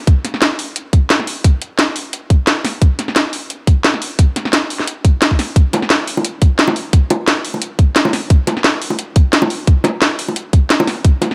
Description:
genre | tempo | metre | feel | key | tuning
drum and bass | 175 BPM | 4/4 | swing 54% on 16ths | none | none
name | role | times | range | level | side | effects
drum and bass drum kit | drums | 0.1-11.3 s | hi-hat, snare drum | -18 LUFS | equal | none
electronic kick drum | drums | 0.1-11.1 s | none | -12 LUFS | equal | none
bongos | percussion | 5.7-11.3 s | none | -21 LUFS | equal | none
room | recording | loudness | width
light reverb | none | -15 LUFS | mono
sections
0.0-11.3 A section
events
none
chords
none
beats
| 0.07 0.42 0.76 1.10 | 1.45 1.79 2.13 2.47 | 2.82 3.16 3.50 3.85 | 4.19 4.53 4.87 5.22 | 5.56 5.90 6.25 6.59 | 6.93 7.27 7.62 7.96 | 8.30 8.64 8.99 9.33 | 9.67 10.02 10.36 10.70 | 11.04

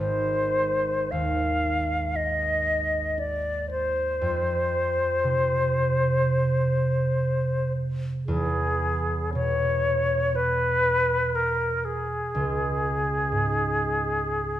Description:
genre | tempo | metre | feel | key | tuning
classical, impressionist duo for flute and harp | 50-62 BPM | 4/4 | rubato | unclear | A4 = 440 Hz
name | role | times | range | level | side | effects
bright concert flute | melody | 0.0-14.6 s | G#4 to F5 | -24 LUFS | left 1 dB | none
concert harp | accompaniment | 0.0-14.6 s | Ab1 to Ab3 | -27 LUFS | right 2 dB | none
room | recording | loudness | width
wet recital hall reverb, RT60 1.6 s | minimal, uncompressed stereo recording | -22 LUFS | side -12 dB against mid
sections
0.0-14.6 A section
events
none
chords
0.0 Ab5; 4.2 F5; 8.3 E6; 12.3 Db5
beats
1.12 2.17 3.21 | 4.23 5.24 6.26 7.26 | 8.28 9.36 10.37 11.36 | 12.35 13.31 14.29

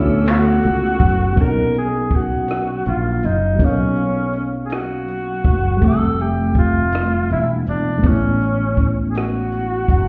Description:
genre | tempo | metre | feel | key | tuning
slow six-eight R&B | 54 BPM (dotted quarters) | 6/8 | straight | unclear | A4 = 443 Hz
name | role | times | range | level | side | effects
breathy tenor saxophone | melody | 0.0-10.1 s | C#4 to A#4 | -24 LUFS | equal | none
FM electric piano with tremolo | accompaniment | 0.0-10.1 s | F#3 to F5 | -26 LUFS | equal | none
warm studio string section | sustained chords | 0.0-1.4 s | A4 to E6 | -35 LUFS | equal | none
sustaining fretless electric bass | bass | 0.0-10.1 s | E1 to D2 | -22 LUFS | equal | subtle chorus
compact cocktail drum kit | drums | 0.3-10.1 s | handclaps, hi-hat, kick drum, rim click | -21 LUFS | equal | none
room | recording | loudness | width
light reverb, small room reverb | heard muffled through a wall, stone room reverb, EQ | -18 LUFS | mono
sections
0.0-1.4 A section; 1.4-10.1 B section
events
none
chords
0.0 E9sus4; 1.4 Bmaj9; 5.8 Fmaj9; 8.0 Amaj9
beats
0.26 | 1.37 2.48 | 3.59 4.70 | 5.82 6.93 | 8.04 9.15

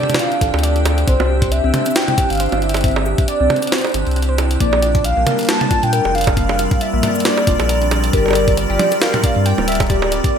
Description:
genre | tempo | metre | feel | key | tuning
IDM | 136 BPM | 4/4 | swing 56% on 16ths | unclear | A4 = 439 Hz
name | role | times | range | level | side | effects
warm velvety synth lead | melody | 0.0-10.4 s | Bb4 to A5 | -20 LUFS | equal | chorus, ping-pong delay
icy glass pad | sustained chords | 0.0-10.4 s | G3 to G5 | -22 LUFS | right 1 dB | chorus, built-in reverb
harp-like synth pluck | arpeggios | 0.0-10.2 s | Bb3 to G5 | -23 LUFS | left 1 dB | chorus, digital delay
jungle sampler-style drum kit | drums | 0.0-10.3 s | bongos, hi-hat, shaker, snare drum, toms | -21 LUFS | right 2 dB | gated reverb
warm sub bass | bass | 0.4-10.2 s | D1 to Bb2 | -19 LUFS | equal | tube saturation
electronic kick drum | drums | 0.4-10.3 s | none | -18 LUFS | equal | none
room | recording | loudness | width
moderate plate reverb, RT60 1.0 s, digital ambience | bright 1980s-style digital production | -14 LUFS | side -7 dB against mid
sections
0.0-10.4 A section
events
none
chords
0.0 Dm7; 1.1 C; 4.6 Bbadd9; 8.1 Gm7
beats
0.19 0.63 | 1.07 1.52 1.96 2.40 | 2.84 3.28 3.72 4.16 | 4.60 5.04 5.49 5.93 | 6.37 6.81 7.25 7.69 | 8.13 8.57 9.02 9.46 | 9.90 10.34

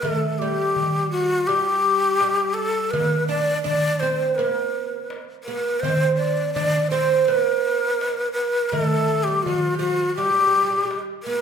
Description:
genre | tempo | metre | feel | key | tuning
Arabic maqam ensemble | 83 BPM | 4/4 | straight | G maqam rast | A4 = 439 Hz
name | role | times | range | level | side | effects
breathy ney | melody | 0.0-11.4 s | F#4-48c to D5 | -21 LUFS | left 1 dB | none
oud | second line | 0.0-11.4 s | F#3-50c to D4 | -26 LUFS | right 6 dB | none
darbuka | percussion | 0.0-11.4 s | none | -27 LUFS | equal | none
room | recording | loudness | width
wet recital hall reverb, RT60 1.5 s | minimal, uncompressed stereo recording | -19 LUFS | side -7 dB against mid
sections
0.0-11.4 A section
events
none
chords
none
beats
| 0.03 0.75 1.48 2.20 | 2.93 3.65 4.38 5.10 | 5.83 6.55 7.28 8.01 | 8.73 9.46 10.19 10.91

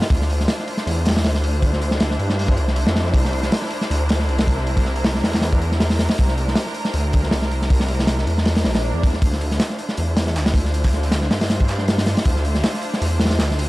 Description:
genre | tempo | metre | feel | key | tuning
drum and bass, jungle | 158 BPM | 4/4 | swing 54% on 16ths | D minor | A4 = 440 Hz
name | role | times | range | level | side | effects
muted studio string section | sustained chords | 0.0-13.7 s | D4 to C5 | -27 LUFS | equal | none
crunchy breakbeat drum kit | drums | 0.0-13.7 s | hi-hat, kick drum, snare drum | -20 LUFS | equal | none
detuned saw bass | bass | 0.1-13.7 s | Bb1 to G2 | -21 LUFS | equal | tube saturation
swell | sound effects | 8.6-9.2 s | none | -31 LUFS | equal | none
breakbeat sampler-style drum kit | drums | 9.2-13.7 s | hi-hat, snare drum | -34 LUFS | right 2 dB | high-pass filter on snare, high-pass filter on hats
room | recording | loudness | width
small room ambience | dry, gritty hardware recording | -17 LUFS | side -19 dB against mid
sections
0.0-13.7 A section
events
swell 8.6-9.2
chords
0.0 Dm9; 3.1 C9; 9.2 Dm9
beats
| 0.10 0.48 0.86 1.24 | 1.62 2.00 2.38 2.76 | 3.14 3.52 3.90 4.28 | 4.66 5.04 5.42 5.80 | 6.18 6.56 6.94 7.32 | 7.70 8.08 8.46 8.84 | 9.22 9.60 9.98 10.36 | 10.74 11.12 11.50 11.88 | 12.26 12.64 13.02 13.40

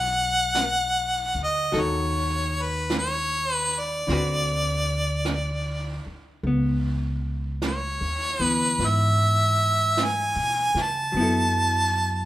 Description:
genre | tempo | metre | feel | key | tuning
jazz ballad | 51 BPM | 4/4 | swing 68% on 8ths | unclear | A4 = 438 Hz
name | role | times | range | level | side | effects
bright harmonica | melody | 0.0-12.3 s | B4 to A5 | -23 LUFS | equal | none
hollow-body jazz guitar | accompaniment | 0.0-12.3 s | D3 to B4 | -29 LUFS | left 2 dB | none
upright bass | bass | 0.0-12.3 s | B1 to C#3 | -27 LUFS | equal | none
jazz brush drum kit | drums | 0.5-12.3 s | brushed snare drum, hi-hat, snare drum | -34 LUFS | right 2 dB | none
room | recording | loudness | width
moderate recital hall reverb, RT60 1.6 s | recorded in a church or concert hall | -21 LUFS | side -14 dB against mid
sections
0.0-12.3 A section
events
none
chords
0.0 G#m9; 1.7 D#dim; 4.1 D6; 6.4 C#m7; 11.1 F#m7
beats
0.56 | 1.74 2.91 4.09 5.26 | 6.44 7.61 8.79 9.97 | 11.15

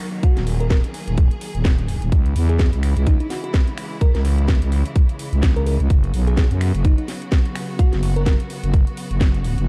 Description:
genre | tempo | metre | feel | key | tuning
bass house | 127 BPM | 4/4 | swing 57% on 16ths | unclear | A4 = 440 Hz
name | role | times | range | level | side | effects
clear studio string section | sustained chords | 0.0-9.7 s | Db3 to Ab4 | -34 LUFS | equal | sidechain pumping
house drum kit | drums | 0.0-9.7 s | finger snaps, hi-hat, snare drum | -32 LUFS | equal | small room ambience
downlifter | sound effects | 0.0-2.1 s | none | barely audible | none | none
bell-like FM electric piano | melody | 0.2-8.4 s | Eb4 to Bb4 | -33 LUFS | equal | chorus, vintage 12-bit sampler grit, digital delay
electronic kick drum | drums | 0.2-9.3 s | none | -18 LUFS | equal | small room ambience
growling FM bass | bass | 0.4-9.7 s | Eb1 to Gb2 | -21 LUFS | equal | tube saturation, sidechain pumping
room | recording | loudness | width
digital ambience | dark, warm production | -19 LUFS | mono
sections
0.0-9.7 A section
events
none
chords
0.0 Ebm; 2.1 Dbm; 5.9 Gbsus4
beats
| 0.23 0.70 1.18 1.65 | 2.12 2.59 3.07 3.54 | 4.01 4.48 4.96 5.43 | 5.90 6.37 6.85 7.32 | 7.79 8.26 8.74 9.21 | 9.68

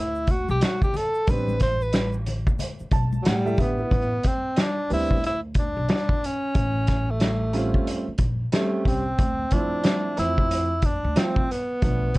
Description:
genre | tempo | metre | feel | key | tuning
hip hop, jazz-hop | 91 BPM | 4/4 | swing 61% on 16ths | unclear | A4 = 440 Hz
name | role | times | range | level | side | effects
breathy tenor saxophone | melody | 0.0-12.2 s | F#3 to C5 | -26 LUFS | equal | none
upright bass | bass | 0.0-12.2 s | A1 to A2 | -27 LUFS | equal | none
egg shaker and congas | percussion | 0.2-3.9 s | none | -36 LUFS | left 5 dB | none
vintage drum kit | drums | 0.3-12.2 s | hi-hat, kick drum, snare drum | -24 LUFS | equal | none
warm upright piano | accompaniment | 1.3-12.1 s | E3 to A5 | -29 LUFS | right 2 dB | none
room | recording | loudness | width
light reverb | cassette tape | -21 LUFS | side -21 dB against mid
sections
0.0-3.9 A section; 3.9-12.2 B section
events
tenor saxophone solo 0.0-3.9; upright piano fill 2.6-3.9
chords
0.0 Asus4; 3.9 Asus4 (rootless); 6.6 A7alt; 9.2 Dm9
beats
0.62 | 1.28 1.94 2.60 3.26 | 3.92 4.58 5.23 5.89 | 6.55 7.21 7.87 8.53 | 9.19 9.85 10.51 11.17 | 11.83

